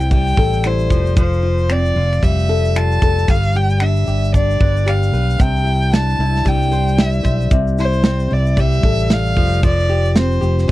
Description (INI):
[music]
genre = acoustic pop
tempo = 113 BPM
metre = 4/4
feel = swing 60% on 16ths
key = unclear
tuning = A4 = 440 Hz
[part]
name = warm violin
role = melody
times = 0.0-10.7 s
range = C5 to A5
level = -21 LUFS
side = equal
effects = none
[part]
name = flamenco guitar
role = accompaniment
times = 0.0-10.7 s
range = C3 to C5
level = -21 LUFS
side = left 2 dB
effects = none
[part]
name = fingered electric bass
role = bass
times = 0.0-10.7 s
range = F1 to C2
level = -17 LUFS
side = equal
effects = none
[part]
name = modern studio drum kit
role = drums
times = 0.0-10.7 s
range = finger snaps, kick drum, shaker, snare drum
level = -16 LUFS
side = equal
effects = none
[sound]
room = little or no reverb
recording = dry, close 1970s-style studio recording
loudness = -13 LUFS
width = side -16 dB against mid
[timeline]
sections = 0.0-10.7 A section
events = none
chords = 0.0 Am7/C; 0.9 Fadd9; 3.3 G; 5.4 Cadd9; 7.5 Am7/C; 9.4 Fadd9